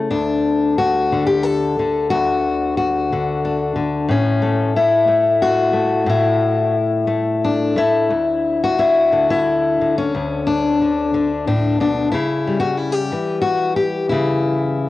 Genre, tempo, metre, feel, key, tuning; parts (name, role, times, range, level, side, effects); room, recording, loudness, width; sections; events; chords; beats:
folk, solo fingerstyle acoustic guitar; 90 BPM; 3/4; rubato; D major; A4 = 440 Hz
fingerpicked steel-string acoustic guitar; solo; 0.0-14.9 s; D2 to A4; -15 LUFS; left 2 dB
moderate small room reverb, RT60 0.5 s; home recording on cassette; -15 LUFS; side -15 dB against mid
0.0-8.1 A section; 8.1-14.9 B section
0.1 N.C.; 8.1 Dsus2; 12.1 C#dim
| 0.11 0.79 1.46 | 2.13 2.79 3.45 | 4.10 4.75 5.41 | 6.07 6.74 7.42 | 8.11 8.79 9.47 | 10.14 10.81 11.48 | 12.14 12.80 13.45 | 14.12 14.79